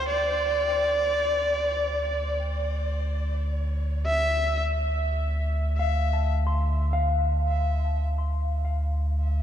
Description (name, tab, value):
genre	ambient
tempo	53 BPM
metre	4/4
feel	straight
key	D minor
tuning	A4 = 438 Hz
part	warm electric violin	melody	0.0-4.6 s	D5 to E5	-27 LUFS	equal	ping-pong delay
part	mellow electric guitar	arpeggios	0.0-9.4 s	F5 to C6	-33 LUFS	left 3 dB	ping-pong delay
part	round analog bass	bass	0.0-9.4 s	D2	-26 LUFS	equal	none
room	moderate huge ambient reverb, RT60 8.4 s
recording	dark, warm production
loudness	-23 LUFS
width	side -10 dB against mid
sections	0.0-9.4 A section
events	fade-in on analog synth bass 0.0-9.4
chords	0.0 Dm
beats	| 0.11 1.25 2.38 3.52 | 4.66 5.80 6.94 8.07 | 9.21